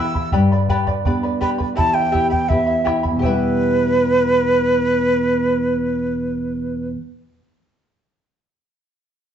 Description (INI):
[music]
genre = andean folk, Andean ensemble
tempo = 83 BPM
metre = 2/4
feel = straight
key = E minor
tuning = A4 = 440 Hz
[part]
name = breathy large quena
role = melody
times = 0.0-6.9 s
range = B4 to E6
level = -19 LUFS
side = right 1 dB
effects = none
[part]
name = charango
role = accompaniment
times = 0.0-7.1 s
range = E4 to B5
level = -23 LUFS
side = left 1 dB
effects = none
[part]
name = nylon-string guitar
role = accompaniment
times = 0.0-7.1 s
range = E2 to G4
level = -20 LUFS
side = equal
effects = none
[part]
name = bombo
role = percussion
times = 0.2-3.6 s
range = none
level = -24 LUFS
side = right 1 dB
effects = none
[sound]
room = wet studio reverb, RT60 1.0 s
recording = band playing live in one room, nothing above 7.9 kHz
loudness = -16 LUFS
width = side -9 dB against mid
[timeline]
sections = 0.0-3.2 A section; 3.2-6.1 B section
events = none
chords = 0.3 G; 1.8 Em